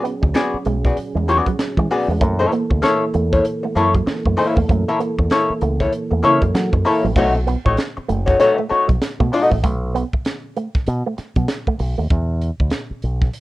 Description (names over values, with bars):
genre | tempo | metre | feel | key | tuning
funk | 97 BPM | 4/4 | swing 60% on 16ths | B mixolydian | A4 = 439 Hz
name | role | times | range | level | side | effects
archtop guitar, miked and amplified | accompaniment | 0.0-9.6 s | A3 to D#5 | -17 LUFS | left 2 dB | wah
percussive tonewheel organ | sustained chords | 0.0-7.1 s | E3 to A4 | -25 LUFS | right 2 dB | slow rotary speaker, chorus vibrato
electric guitar with an envelope filter | riff | 0.0-12.1 s | E3 to B3 | -25 LUFS | right 5 dB | wide subtle chorus
crisp fusion drum kit | drums | 0.1-13.4 s | crash cymbal, hi-hat, kick drum, snare drum | -21 LUFS | equal | none
fingered electric bass with an envelope filter | bass | 0.2-13.3 s | F#1 to F#3 | -20 LUFS | equal | none
room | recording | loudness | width
moderate small room reverb, RT60 0.5 s | rough home demo mix, cassette tape | -16 LUFS | side -17 dB against mid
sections
0.0-7.2 A section; 7.2-13.4 B section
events
break 9.6-13.4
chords
0.0 E9; 2.2 F#7#9; 7.2 B9; 12.1 E5